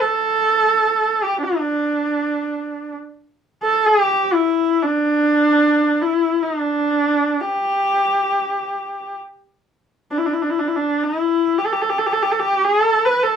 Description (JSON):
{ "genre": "mongolian traditional, Mongolian folk", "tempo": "free time", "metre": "none", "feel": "none", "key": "unclear", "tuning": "A4 = 440 Hz", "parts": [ { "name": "clear horsehead fiddle", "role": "solo", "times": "0.0-13.4 s", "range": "D4 to B4", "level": "-16 LUFS", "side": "equal", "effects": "none" } ], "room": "moderate studio reverb, RT60 0.5 s", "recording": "band playing live in one room", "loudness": "-16 LUFS", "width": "side -7 dB against mid", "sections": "0.0-13.4 A section", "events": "none", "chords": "none" }